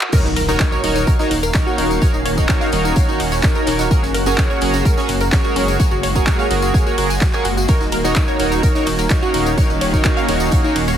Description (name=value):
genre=progressive house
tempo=127 BPM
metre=4/4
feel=straight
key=Eb minor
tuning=A4 = 440 Hz
part: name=wide unison pluck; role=arpeggios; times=0.0-11.0 s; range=Db4 to Ab5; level=-23 LUFS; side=equal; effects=sidechain pumping, tape echo
part: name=house drum kit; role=drums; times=0.0-10.9 s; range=crash cymbal, handclaps, hi-hat, ride cymbal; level=-25 LUFS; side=left 1 dB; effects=small room ambience, sidechain pumping on hats, sidechain pumping on cymbals
part: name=shimmering ambient pad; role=sustained chords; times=0.1-11.0 s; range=Eb3 to F5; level=-24 LUFS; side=equal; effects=chorus, built-in reverb, sidechain pumping
part: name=chorused polysynth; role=stabs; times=0.1-10.8 s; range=Eb4 to Db5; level=-21 LUFS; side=right 2 dB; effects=vintage 12-bit sampler grit, sidechain pumping, tape echo
part: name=electronic kick drum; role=drums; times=0.1-10.6 s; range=none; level=-16 LUFS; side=equal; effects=small room ambience
part: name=huge arena drum kit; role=drums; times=0.1-11.0 s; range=hi-hat, snare drum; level=-33 LUFS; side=right 2 dB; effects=none
part: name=tambourine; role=percussion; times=0.1-11.0 s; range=none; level=-31 LUFS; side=left 5 dB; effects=none
part: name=impact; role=sound effects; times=0.2-2.0 s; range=none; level=-27 LUFS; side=equal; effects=none
part: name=dark detuned saw bass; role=bass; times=0.2-11.0 s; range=Eb1 to Gb1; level=-22 LUFS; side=equal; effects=tube saturation, sidechain pumping, high-pass filter
room=small room ambience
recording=heavily compressed radio sound, high-pass filter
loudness=-14 LUFS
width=side -10 dB against mid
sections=0.1-11.0 A section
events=drop 0.1-11.0; impact 0.1-2.0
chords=0.1 Ebm7; 3.9 Gbadd9; 7.7 Ebm7